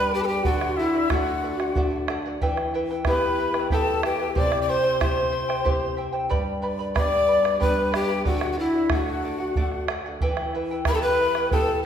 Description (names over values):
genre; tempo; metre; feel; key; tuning
andean folk, Andean ensemble; 92 BPM; 3/4; straight; E minor; A4 = 440 Hz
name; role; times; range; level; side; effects
breathy bright polished pan flute; melody; 0.0-11.9 s; E4 to D5; -24 LUFS; left 1 dB; none
breathy bright quena; second line; 0.0-11.8 s; E5 to D6; -29 LUFS; left 2 dB; none
charango; accompaniment; 0.0-11.9 s; E4 to B5; -30 LUFS; equal; none
flamenco guitar; accompaniment; 0.0-11.9 s; G2 to G4; -30 LUFS; left 1 dB; none
bombo; percussion; 0.4-11.8 s; none; -27 LUFS; right 2 dB; none
room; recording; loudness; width
wet recital hall reverb, RT60 1.4 s; recorded in a church or concert hall; -21 LUFS; side -8 dB against mid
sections
0.0-11.9 A section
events
none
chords
0.5 D; 2.4 Em; 4.4 C; 6.3 G; 8.3 D; 10.2 Em